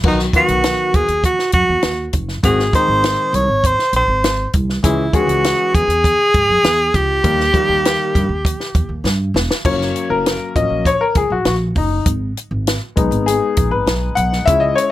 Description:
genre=uptempo 1960s-style soul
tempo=100 BPM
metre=4/4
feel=straight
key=G# minor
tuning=A4 = 436 Hz
part: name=clear grand piano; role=accompaniment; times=0.0-14.9 s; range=D#3 to F#5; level=-18 LUFS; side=left 4 dB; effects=plate reverb
part: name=upright bass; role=bass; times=0.0-14.7 s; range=E1 to G#2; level=-21 LUFS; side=right 1 dB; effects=none
part: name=compact cocktail drum kit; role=drums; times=0.0-14.9 s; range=crash cymbal, hi-hat, kick drum, snare drum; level=-18 LUFS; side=equal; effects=none
part: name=warm tenor saxophone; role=melody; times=0.1-9.1 s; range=D#4 to C#5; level=-15 LUFS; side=right 1 dB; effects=plate reverb
room=light reverb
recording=none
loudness=-14 LUFS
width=side -14 dB against mid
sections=0.0-9.7 A section; 9.7-14.9 B section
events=drum fill 9.1-9.7; grand piano solo 9.7-14.9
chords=0.0 B; 2.4 G#; 4.8 C#m; 7.2 D#; 9.7 F#; 12.1 G#m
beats=| 0.05 0.65 1.25 1.84 | 2.44 3.04 3.64 4.24 | 4.84 5.44 6.04 6.64 | 7.25 7.85 8.45 9.05 | 9.65 10.26 10.86 11.46 | 12.07 12.67 13.27 13.88 | 14.48

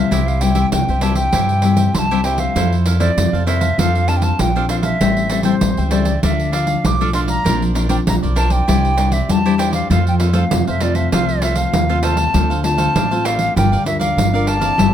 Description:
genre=samba and choro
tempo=98 BPM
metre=4/4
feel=straight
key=F major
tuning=A4 = 440 Hz
part: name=bright wooden flute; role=melody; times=0.0-14.9 s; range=C5 to D6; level=-20 LUFS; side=equal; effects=plate reverb
part: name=cavaquinho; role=accompaniment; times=0.0-14.9 s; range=D4 to G5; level=-26 LUFS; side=right 6 dB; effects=none
part: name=nylon-string guitar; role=accompaniment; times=0.0-14.9 s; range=G2 to C5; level=-21 LUFS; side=left 6 dB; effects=none
part: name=upright bass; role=bass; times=0.0-14.9 s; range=G1 to G2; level=-18 LUFS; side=equal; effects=none
part: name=pandeiro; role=percussion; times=0.1-14.9 s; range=none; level=-21 LUFS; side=right 2 dB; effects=none
room=light reverb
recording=close, detailed microphones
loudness=-14 LUFS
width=side -10 dB against mid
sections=0.0-12.3 A section; 12.3-14.9 B section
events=none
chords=0.1 C; 2.6 Fmaj7; 3.8 Dm7/F; 5.0 Am7; 6.2 Dm; 7.5 Bbadd9; 8.7 Cadd9; 9.9 F; 12.3 Dm7; 13.6 Gm7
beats=| 0.12 0.73 1.34 1.95 | 2.56 3.17 3.79 4.40 | 5.01 5.62 6.23 6.84 | 7.45 8.06 8.68 9.29 | 9.90 10.51 11.12 11.73 | 12.35 12.96 13.57 14.18 | 14.79

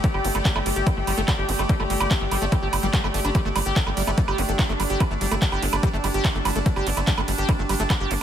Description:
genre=psychedelic trance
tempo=145 BPM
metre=4/4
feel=straight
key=unclear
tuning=A4 = 436 Hz
part: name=overtone-sweeping drone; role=sustained chords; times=0.0-8.2 s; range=A3 to G4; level=-30 LUFS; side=right 1 dB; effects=chorus, built-in reverb, sidechain pumping
part: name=liquid acid bass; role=riff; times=0.0-8.1 s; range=G3 to G4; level=-29 LUFS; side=equal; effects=chorus, auto-pan, sidechain pumping, dub echo
part: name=big-room dance drum kit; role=drums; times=0.0-8.2 s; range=handclaps, hi-hat, ride cymbal, woodblock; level=-27 LUFS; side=right 4 dB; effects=overdrive
part: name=electronic kick drum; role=drums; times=0.0-8.0 s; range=none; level=-22 LUFS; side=equal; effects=overdrive
part: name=warm studio string section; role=texture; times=0.0-8.2 s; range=G4 to A5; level=-32 LUFS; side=right 1 dB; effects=sidechain pumping
part: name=tight sequencer bass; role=bass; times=0.1-8.2 s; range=G1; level=-26 LUFS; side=equal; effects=none
room=light reverb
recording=none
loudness=-20 LUFS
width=side -10 dB against mid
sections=0.0-8.2 A section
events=none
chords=0.0 G5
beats=| 0.04 0.45 0.87 1.28 | 1.69 2.11 2.52 2.94 | 3.35 3.76 4.18 4.59 | 5.00 5.42 5.83 6.25 | 6.66 7.07 7.49 7.90

